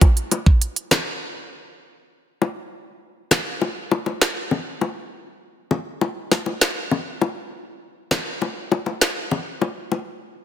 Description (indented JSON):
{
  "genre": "dancehall",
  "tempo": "100 BPM",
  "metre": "4/4",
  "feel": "straight",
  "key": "none",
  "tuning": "none",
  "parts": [
    { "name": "island pop drum kit", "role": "drums", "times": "0.0-9.2 s", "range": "handclaps, hi-hat, kick drum, snare drum", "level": "-19 LUFS", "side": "right 1 dB", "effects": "none" },
    { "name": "bongos", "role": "percussion", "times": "0.0-10.1 s", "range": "none", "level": "-24 LUFS", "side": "left 5 dB", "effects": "none" }
  ],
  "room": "light reverb, digital ambience",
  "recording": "dense, heavily limited modern master",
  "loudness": "-20 LUFS",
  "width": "side -10 dB against mid",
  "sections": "0.0-2.4 A section; 2.4-10.4 B section",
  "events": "break 1.2-2.4, 2.4-10.4",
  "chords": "none"
}